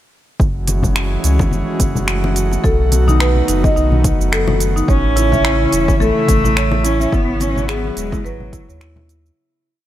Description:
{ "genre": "organic downtempo", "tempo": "107 BPM", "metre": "4/4", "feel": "swing 56% on 16ths", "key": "F# dorian", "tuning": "A4 = 441 Hz", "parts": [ { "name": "airy breathy pad", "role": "sustained chords", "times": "0.4-9.3 s", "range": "C#3 to F#4", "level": "-22 LUFS", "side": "right 2 dB", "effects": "chorus, sidechain pumping" }, { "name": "warm sub bass", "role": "bass", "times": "0.4-9.3 s", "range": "D#1 to D#2", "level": "-18 LUFS", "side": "equal", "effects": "tube saturation, sidechain pumping" }, { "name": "deep house drum kit", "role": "drums", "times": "0.4-9.4 s", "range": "finger snaps, hi-hat, shaker", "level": "-23 LUFS", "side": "right 1 dB", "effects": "none" }, { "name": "electronic kick drum", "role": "drums", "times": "0.4-8.7 s", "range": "none", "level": "-17 LUFS", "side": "equal", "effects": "none" }, { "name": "congas", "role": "percussion", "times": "0.7-9.1 s", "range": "none", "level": "-24 LUFS", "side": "left 3 dB", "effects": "none" }, { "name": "marimba with medium mallets", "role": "arpeggios", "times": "2.6-9.4 s", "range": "D#4 to E5", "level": "-20 LUFS", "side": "left 1 dB", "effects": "ping-pong delay" }, { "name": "rich cello", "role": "melody", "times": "4.9-8.8 s", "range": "F#3 to C#4", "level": "-19 LUFS", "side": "right 1 dB", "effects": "ping-pong delay" } ], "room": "light reverb", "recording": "none", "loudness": "-13 LUFS", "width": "side -13 dB against mid", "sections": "0.4-9.4 groove", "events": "fade-out 6.4-9.4", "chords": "0.4 F#m9; 2.6 B7; 4.9 A; 7.1 E69", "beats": "| 0.40 0.96 1.52 2.08 | 2.64 3.20 3.76 4.32 | 4.88 5.45 6.01 6.57 | 7.13 7.69 8.25 8.81" }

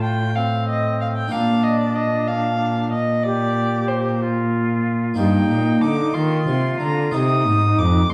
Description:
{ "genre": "classical, baroque-style sonata movement with continuo", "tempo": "62 BPM (dotted quarters)", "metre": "12/8", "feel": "rubato", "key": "Bb major", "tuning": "A4 = 440 Hz", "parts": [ { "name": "dark violin", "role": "melody", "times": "0.0-8.1 s", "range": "C5 to Eb6", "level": "-26 LUFS", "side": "equal", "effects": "none" }, { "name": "silver concert flute", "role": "second line", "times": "0.0-8.1 s", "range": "C4 to G4", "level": "-27 LUFS", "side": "equal", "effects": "none" }, { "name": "harpsichord", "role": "accompaniment", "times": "0.0-8.1 s", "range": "Eb2 to C5", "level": "-29 LUFS", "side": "equal", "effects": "none" }, { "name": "dark cello", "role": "bass", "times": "0.0-8.1 s", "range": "Eb2 to Eb3", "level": "-23 LUFS", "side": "equal", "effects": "none" } ], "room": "wet recital hall reverb, RT60 1.2 s", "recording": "dark, warm production", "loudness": "-20 LUFS", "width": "mono", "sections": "0.0-8.1 A section", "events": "none", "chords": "0.0 F/A; 1.3 Bb; 5.2 Eb/G; 7.1 Cm", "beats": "0.36 | 1.32 2.28 3.25 4.22 | 5.18 6.14 7.14 8.10" }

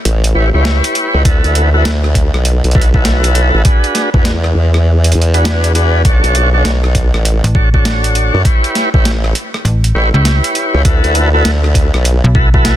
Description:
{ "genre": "glitch hop", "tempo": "100 BPM", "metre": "4/4", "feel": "swing 63% on 16ths", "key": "unclear", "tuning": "A4 = 440 Hz", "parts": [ { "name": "formant-sweep wobble bass", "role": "bass", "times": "0.1-12.2 s", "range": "A1 to F#2", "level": "-11 LUFS", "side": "equal", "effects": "chorus, tube saturation" }, { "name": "boom bap sampler-style drum kit", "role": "drums", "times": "0.1-12.8 s", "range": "hi-hat, rim click, snare drum", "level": "-19 LUFS", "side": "right 1 dB", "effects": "overdrive" }, { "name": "tonewheel organ", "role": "stabs", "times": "0.4-12.8 s", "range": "D4 to C#5", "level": "-17 LUFS", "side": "equal", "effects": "slow rotary speaker, sidechain pumping, ping-pong delay" }, { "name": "electronic kick drum", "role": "drums", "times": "1.3-12.6 s", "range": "none", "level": "-11 LUFS", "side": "equal", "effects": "overdrive" }, { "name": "slap-like FM bass", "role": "bass", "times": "7.4-12.8 s", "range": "A1 to C#2", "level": "-12 LUFS", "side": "equal", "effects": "none" } ], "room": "digital ambience", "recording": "dense, heavily limited modern master", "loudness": "-9 LUFS", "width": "side -12 dB against mid", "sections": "0.0-12.8 A section", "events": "none", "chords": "0.0 A9; 1.2 D69; 3.6 E9; 6.0 Bm9; 8.4 A9; 10.8 D69", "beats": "0.05 0.65 | 1.25 1.85 2.45 3.05 | 3.65 4.25 4.85 5.45 | 6.05 6.65 7.25 7.85 | 8.45 9.05 9.65 10.25 | 10.85 11.45 12.05 12.65" }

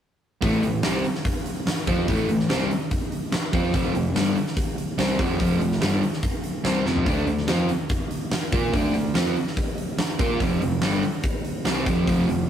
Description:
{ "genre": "classic rock", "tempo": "144 BPM", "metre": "4/4", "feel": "straight", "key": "A minor", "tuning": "A4 = 440 Hz", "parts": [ { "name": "overdriven semi-hollow guitar", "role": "riff", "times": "0.4-12.5 s", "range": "F2 to Bb4", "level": "-27 LUFS", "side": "left 3 dB", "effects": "none" }, { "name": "sludgy distorted guitar", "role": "riff", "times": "0.4-12.4 s", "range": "F2 to Bb4", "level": "-25 LUFS", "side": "right 3 dB", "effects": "overdrive" }, { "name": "fuzz picked electric bass", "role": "bass", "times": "0.4-12.5 s", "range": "F1 to Bb2", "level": "-29 LUFS", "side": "left 1 dB", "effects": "overdrive" }, { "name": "huge arena drum kit", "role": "drums", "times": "0.4-12.4 s", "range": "hi-hat, kick drum, snare drum, toms", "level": "-25 LUFS", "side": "equal", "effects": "none" } ], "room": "moderate stone room reverb, RT60 0.9 s", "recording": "rough rehearsal-room recording", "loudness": "-21 LUFS", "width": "side -9 dB against mid", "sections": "0.4-12.5 A section", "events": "drum fill 6.9", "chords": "0.4 Am; 3.7 F5; 7.1 D5; 10.4 F5", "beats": "| 0.42 0.84 1.25 1.67 | 2.08 2.49 2.91 3.32 | 3.74 4.15 4.57 4.98 | 5.40 5.82 6.23 6.65 | 7.07 7.48 7.90 8.32 | 8.73 9.15 9.57 9.99 | 10.40 10.82 11.24 11.66 | 12.07" }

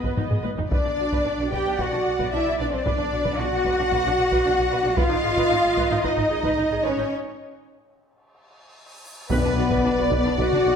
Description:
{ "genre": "cinematic, epic orchestral film score", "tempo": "112 BPM", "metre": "4/4", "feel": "straight", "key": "unclear", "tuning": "A4 = 440 Hz", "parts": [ { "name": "warm symphonic violin section", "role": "melody", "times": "0.0-10.8 s", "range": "B4 to G5", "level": "-30 LUFS", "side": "left 1 dB", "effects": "none" }, { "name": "warm symphonic violin section", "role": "second line", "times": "0.0-10.8 s", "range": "B4 to G5", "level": "-29 LUFS", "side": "left 4 dB", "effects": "none" }, { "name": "clear symphonic viola section", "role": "accompaniment", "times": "0.0-10.8 s", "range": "D4 to D#5", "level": "-29 LUFS", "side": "right 1 dB", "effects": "none" }, { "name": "mellow French horn section", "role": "sustained chords", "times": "0.0-10.8 s", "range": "B3 to G4", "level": "-26 LUFS", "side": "left 2 dB", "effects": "none" }, { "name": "rich symphonic cello section", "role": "bass", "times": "0.0-10.8 s", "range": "B3 to G4", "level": "-27 LUFS", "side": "right 2 dB", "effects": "none" }, { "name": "rich symphonic double bass section", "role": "bass", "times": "0.0-10.7 s", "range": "G#1 to B1", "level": "-31 LUFS", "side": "right 3 dB", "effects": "none" }, { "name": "taiko ensemble", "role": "drums", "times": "0.0-10.8 s", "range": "none", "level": "-28 LUFS", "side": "equal", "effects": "none" }, { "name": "cymbal swell and sub drop", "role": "sound effects", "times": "8.6-10.8 s", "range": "none", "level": "-36 LUFS", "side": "equal", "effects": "none" }, { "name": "warm tuba", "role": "bass", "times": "9.3-10.7 s", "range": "B1", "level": "-30 LUFS", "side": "right 4 dB", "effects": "none" }, { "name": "timpani", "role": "percussion", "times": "9.3-10.1 s", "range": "B2", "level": "-31 LUFS", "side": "left 2 dB", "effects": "none" } ], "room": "wet scoring stage reverb, RT60 1.5 s", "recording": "none", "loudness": "-20 LUFS", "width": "side -7 dB against mid", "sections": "0.0-9.3 A section; 9.3-10.8 A section", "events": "drum fill 0.2-0.7, 8.8-9.3; break 7.1-9.3; cymbal swell 8.6-9.3; impact 9.3-10.8", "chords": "0.0 G#m; 0.7 Bm; 5.0 G#5; 9.3 Bm", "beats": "0.18 | 0.72 1.26 1.79 2.33 | 2.86 3.39 3.92 4.45 | 4.98 5.51 6.04 6.58 | 7.12 7.67 8.22 8.76 | 9.30 9.85 10.39" }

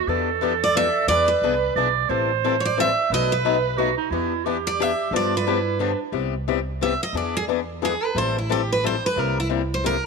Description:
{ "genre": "acoustic string swing (jazz manouche)", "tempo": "178 BPM", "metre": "3/4", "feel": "swing 59% on 8ths", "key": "C major", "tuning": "A4 = 445 Hz", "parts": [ { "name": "bright clarinet", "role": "second line", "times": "0.0-6.1 s", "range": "D4 to D5", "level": "-25 LUFS", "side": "right 13 dB", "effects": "none" }, { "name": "upright bass", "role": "bass", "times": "0.0-10.0 s", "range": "A1 to G2", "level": "-29 LUFS", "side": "right 1 dB", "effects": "none" }, { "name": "picked swing-style acoustic guitar", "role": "accompaniment", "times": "0.1-10.0 s", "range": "B2 to A4", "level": "-25 LUFS", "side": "left 14 dB", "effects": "none" }, { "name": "picked steel-string acoustic guitar", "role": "melody", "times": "0.6-10.0 s", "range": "E4 to E5", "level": "-23 LUFS", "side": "right 2 dB", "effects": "none" } ], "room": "moderate plate reverb, RT60 2.8 s", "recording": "1960s-style stereo with parts hard left and right", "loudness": "-20 LUFS", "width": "side -4 dB against mid", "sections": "0.0-6.1 A section; 6.1-10.1 B section", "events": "steel-string acoustic guitar solo 6.1-10.1", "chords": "0.1 Em7; 1.1 E7; 2.1 Am7; 3.1 B7; 4.1 Em7; 5.1 G7; 6.1 Cmaj7; 7.1 E7; 8.2 Am7; 9.2 C7", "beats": "| 0.08 0.41 0.75 | 1.09 1.42 1.76 | 2.10 2.43 2.77 | 3.11 3.44 3.78 | 4.12 4.45 4.79 | 5.12 5.46 5.80 | 6.13 6.47 6.81 | 7.14 7.48 7.82 | 8.15 8.49 8.83 | 9.17 9.50 9.84" }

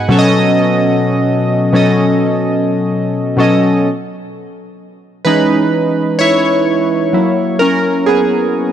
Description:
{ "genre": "R&B", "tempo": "64 BPM", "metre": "4/4", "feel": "straight", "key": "unclear", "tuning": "A4 = 440 Hz", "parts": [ { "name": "warm analog keys", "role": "solo", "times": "0.0-8.7 s", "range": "B2 to B5", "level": "-11 LUFS", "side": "equal", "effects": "chorus" } ], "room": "light reverb", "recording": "dark, warm production", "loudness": "-11 LUFS", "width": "side -10 dB against mid", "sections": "0.0-3.8 A section; 3.8-8.7 B section", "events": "synth keys solo 3.8-8.7", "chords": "0.1 B9; 3.8 E6; 7.1 F#9", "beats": "| 0.10 1.03 1.97 2.91 | 3.85 4.78 5.72 6.66 | 7.59 8.53" }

